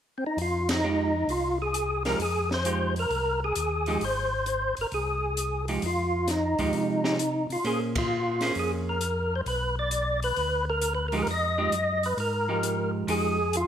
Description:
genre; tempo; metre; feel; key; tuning
soul jazz organ trio; 132 BPM; 4/4; swing 68% on 8ths; F dorian; A4 = 440 Hz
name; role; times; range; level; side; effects
percussive tonewheel organ; melody; 0.2-13.7 s; C4 to Eb5; -27 LUFS; equal; slow rotary speaker, overdrive, chorus vibrato
mellow tonewheel organ; bass; 0.4-13.6 s; Ab1 to C3; -32 LUFS; equal; overdrive, chorus vibrato, slow rotary speaker
open jazz drum kit; drums; 0.4-13.7 s; hi-hat, kick drum, ride cymbal, snare drum; -34 LUFS; left 1 dB; none
vintage hollow-body jazz guitar; accompaniment; 0.8-13.4 s; F3 to C5; -31 LUFS; right 4 dB; none
room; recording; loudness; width
moderate large studio reverb, RT60 1.3 s; none; -25 LUFS; side -9 dB against mid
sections
0.4-13.7 A section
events
band accent 0.6, 7.9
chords
0.4 Fm9; 7.6 Bbm9; 9.5 Bm; 11.3 Fm9

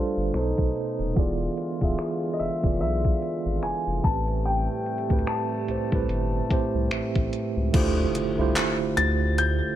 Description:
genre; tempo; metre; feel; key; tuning
contemporary R&B; 73 BPM; 4/4; swing 58% on 16ths; A minor; A4 = 440 Hz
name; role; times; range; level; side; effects
bright baby grand piano; melody; 0.0-9.8 s; B#4 to A6; -29 LUFS; left 4 dB; digital delay
mellow tine electric piano; accompaniment; 0.0-9.8 s; A2 to E5; -27 LUFS; right 4 dB; fast stereo tremolo
mellow brass ensemble; sustained chords; 0.0-7.7 s; C3 to F4; -36 LUFS; left 2 dB; none
saturated sub bass; bass; 0.2-9.6 s; D1 to D2; -27 LUFS; left 1 dB; none
gated 80s digital drum machine; drums; 0.3-9.6 s; crash cymbal, finger snaps, handclaps, hi-hat, kick drum; -26 LUFS; left 1 dB; gated reverb, overdrive
impact; sound effects; 7.9-9.8 s; none; -36 LUFS; left 1 dB; none
room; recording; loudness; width
little or no reverb; low-pass filter; -23 LUFS; side -12 dB against mid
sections
0.0-7.7 A section; 7.7-9.8 B section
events
filter sweep 0.0-7.7; tine electric piano fill 6.5-7.7; impact 7.7-9.8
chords
0.3 B7b9; 1.2 E7b9; 4.0 Am7; 7.7 Dm11

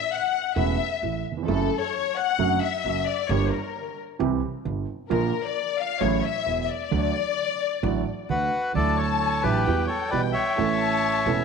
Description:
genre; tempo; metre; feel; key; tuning
tango; 132 BPM; 4/4; rubato; D major; A4 = 440 Hz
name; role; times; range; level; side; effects
warm studio violin section; second line; 0.0-11.4 s; A4 to A5; -26 LUFS; left 11 dB; slapback echo
dark concert grand piano; accompaniment; 0.6-11.4 s; E1 to A4; -27 LUFS; right 9 dB; none
upright bass; bass; 0.6-11.4 s; E1 to E2; -30 LUFS; equal; none
bandoneon; melody; 8.3-11.4 s; F#4 to E5; -24 LUFS; left 2 dB; none
room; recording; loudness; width
moderate echo chamber reverb, RT60 1.9 s, small room ambience; 1960s-style stereo with parts hard left and right; -22 LUFS; side -5 dB against mid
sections
0.0-8.7 A section; 8.7-11.4 B section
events
violin section solo 0.0-8.7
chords
0.0 A; 1.5 F#m7; 2.4 D/F#; 3.3 Gm; 4.2 C; 5.1 Bb; 6.0 A6; 6.9 D; 8.7 Dadd9; 9.7 Emadd9; 10.6 A

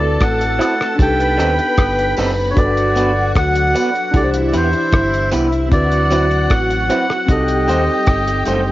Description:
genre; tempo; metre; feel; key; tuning
lovers rock reggae; 76 BPM; 4/4; straight; G major; A4 = 440 Hz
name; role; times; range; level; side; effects
melodica; melody; 0.0-8.4 s; C5 to G5; -19 LUFS; equal; cassette tape, tape echo
string machine, full ensemble; second line; 0.0-8.7 s; E4 to B5; -21 LUFS; equal; ensemble chorus, cassette tape, tape echo
mellow tine electric piano; accompaniment; 0.0-8.7 s; C4 to C5; -22 LUFS; left 1 dB; medium stereo tremolo, cassette tape
deep dub fingered electric bass; bass; 0.0-8.7 s; F#1 to E2; -19 LUFS; equal; none
damped 70s drum kit; drums; 0.2-8.6 s; hi-hat, kick drum, rim click; -18 LUFS; equal; cassette tape
electric guitar through a small old amp; stabs; 0.6-8.6 s; F#3 to C5; -21 LUFS; right 2 dB; tremolo, cassette tape
tambourine and woodblock; percussion; 0.6-8.7 s; none; -31 LUFS; right 2 dB; none
room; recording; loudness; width
light reverb, studio reverb; home recording on cassette, nothing above 7.5 kHz; -13 LUFS; side -16 dB against mid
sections
0.0-2.6 A section; 2.6-8.7 A section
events
none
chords
0.0 D13; 1.0 Cm6; 2.6 Gmaj7; 4.1 Cmaj7; 5.7 D13; 7.3 Cm6

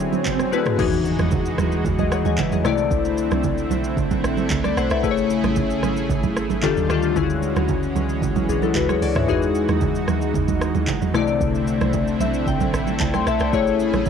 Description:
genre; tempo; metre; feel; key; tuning
amapiano; 113 BPM; 4/4; straight; E major; A4 = 439 Hz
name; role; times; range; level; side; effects
glassy digital keys; accompaniment; 0.0-14.1 s; C3 to C6; -22 LUFS; left 9 dB; chorus, cassette tape
lush unison pad; sustained chords; 0.0-14.1 s; C#3 to G#4; -25 LUFS; right 2 dB; chorus, cassette tape
deep house drum kit; drums; 0.0-14.1 s; crash cymbal, handclaps, hi-hat, kick drum, rim click, shaker, toms; -26 LUFS; right 2 dB; cassette tape
swell and impact; sound effects; 0.0-2.9 s; none; -28 LUFS; right 3 dB; none
congas; percussion; 0.1-14.1 s; none; -26 LUFS; right 12 dB; none
deep log drum bass; bass; 0.8-14.1 s; G#1 to E2; -26 LUFS; right 2 dB; none
room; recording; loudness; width
light reverb; home recording on cassette; -18 LUFS; side -7 dB against mid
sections
0.8-14.1 A section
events
swell 0.0-0.8; drop 0.8-14.1; impact 0.8-2.9; synth keys fill 11.9-13.5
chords
0.0 Dmaj9#11; 0.8 Emaj9; 2.6 C69; 5.0 Amaj7; 6.6 D#maj9#11; 7.2 Dmaj9#11; 9.3 Emaj9; 11.1 C69; 13.5 Amaj7

